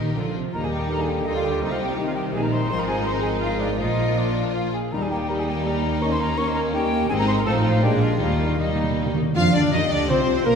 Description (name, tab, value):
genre	quick classical-period movement for symphony orchestra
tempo	155-170 BPM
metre	3/4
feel	rubato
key	Eb major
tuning	A4 = 440 Hz
part	rich studio violin section	melody	0.0-10.6 s	C4 to F5	-32 LUFS	left 5 dB	none
part	dark studio violin section	second line	0.0-10.6 s	G3 to F5	-31 LUFS	left 3 dB	none
part	rich studio viola section	accompaniment	0.0-10.6 s	D3 to F4	-30 LUFS	right 1 dB	none
part	dark symphonic double bass section	bass	0.0-10.6 s	Ab1 to F2	-27 LUFS	right 2 dB	none
part	warm studio cello section	bass	0.0-10.6 s	Eb2 to F3	-27 LUFS	right 1 dB	none
part	bright clarinet	second line	0.5-10.6 s	C4 to F5	-32 LUFS	left 2 dB	none
part	concert flute	second line	0.5-10.6 s	Bb4 to Db6	-29 LUFS	left 3 dB	none
part	mellow cor anglais	second line	0.5-10.6 s	D4 to F5	-32 LUFS	right 1 dB	none
part	mellow bassoon	accompaniment	0.5-10.5 s	C3 to F4	-29 LUFS	equal	none
part	mellow French horn section	sustained chords	0.5-10.6 s	Eb3 to Bb4	-30 LUFS	left 3 dB	none
part	timpani	percussion	0.5-1.1, 4.9-5.4, 8.2-9.3 s	Eb3	-29 LUFS	equal	none
room	wet scoring stage reverb, RT60 1.8 s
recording	recorded in a church or concert hall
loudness	-20 LUFS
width	side -6 dB against mid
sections	0.5-9.4 A section; 9.4-10.6 B section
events	timpani fill 8.2-9.4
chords	0.2 Bb; 0.5 Eb; 1.6 Cm; 2.7 Fm7/Ab; 3.8 Bb; 4.9 Eb; 6.0 Eb7; 7.1 Ab; 7.5 F7/A; 7.8 Bb7; 8.2 Eb; 9.4 Ebmaj13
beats	0.16 | 0.54 0.91 1.27 | 1.63 1.99 2.34 | 2.70 3.06 3.42 | 3.79 4.17 4.55 | 4.93 5.30 5.66 | 6.03 6.39 6.74 | 7.10 7.46 7.83 | 8.20 8.58 8.97 | 9.35 9.72 10.09 | 10.46